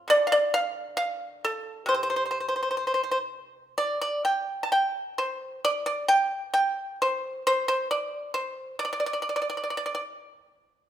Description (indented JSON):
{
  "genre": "chinese traditional, Chinese solo plucked strings",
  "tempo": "66 BPM",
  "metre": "2/4",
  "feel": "rubato",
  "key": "D yu mode",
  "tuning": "A4 = 440 Hz",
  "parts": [
    { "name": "pipa", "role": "solo", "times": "0.0-10.0 s", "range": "C3 to A5", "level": "-24 LUFS", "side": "equal", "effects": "none" }
  ],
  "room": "moderate recital hall reverb, RT60 1.5 s",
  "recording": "minimal, uncompressed stereo recording",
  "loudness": "-25 LUFS",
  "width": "side -11 dB against mid",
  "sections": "0.0-10.9 A section",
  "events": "none",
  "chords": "none"
}